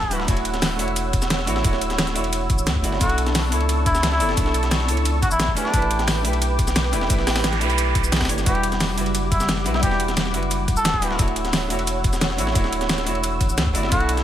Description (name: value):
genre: liquid drum and bass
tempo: 176 BPM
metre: 4/4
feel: straight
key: unclear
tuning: A4 = 440 Hz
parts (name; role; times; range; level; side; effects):
- trumpet with cup mute; melody; 0.0-0.3, 3.0-6.0, 8.5-11.2, 13.9-14.1 s; D4 to A4; -26 LUFS; left 1 dB; ping-pong delay
- archtop guitar, miked and amplified; accompaniment; 0.0-14.2 s; G3 to D5; -26 LUFS; right 1 dB; digital delay
- warm analog pad; sustained chords; 0.0-14.2 s; G3 to E6; -28 LUFS; equal; chorus
- warm sub bass; bass; 0.0-14.2 s; D1 to D2; -25 LUFS; equal; none
- electronic kick drum; drums; 0.0-14.0 s; none; -23 LUFS; equal; studio reverb
- breakbeat sampler-style drum kit; drums; 0.1-14.2 s; hi-hat, ride cymbal, snare drum; -28 LUFS; equal; high-pass filter on cymbals, studio reverb, high-pass filter on snare, high-pass filter on hats
- pop drum kit; drums; 0.1-14.2 s; hi-hat, shaker, snare drum; -26 LUFS; equal; studio reverb
- noise sweep; sound effects; 7.4-8.5 s; none; -28 LUFS; right 7 dB; none
room: light reverb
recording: none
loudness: -18 LUFS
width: side -11 dB against mid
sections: 0.0-14.2 A section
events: noise sweep 7.4-8.5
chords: 0.3 Dmaj9; 3.0 Bm11; 5.6 A9sus4; 8.5 Em9; 11.2 Dmaj9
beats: | 0.28 0.62 0.96 1.30 | 1.65 1.99 2.33 2.67 | 3.01 3.35 3.69 4.03 | 4.37 4.71 5.05 5.40 | 5.74 6.08 6.42 6.76 | 7.10 7.44 7.78 8.12 | 8.46 8.80 9.15 9.49 | 9.83 10.17 10.51 10.85 | 11.19 11.53 11.87 12.21 | 12.55 12.90 13.24 13.58 | 13.92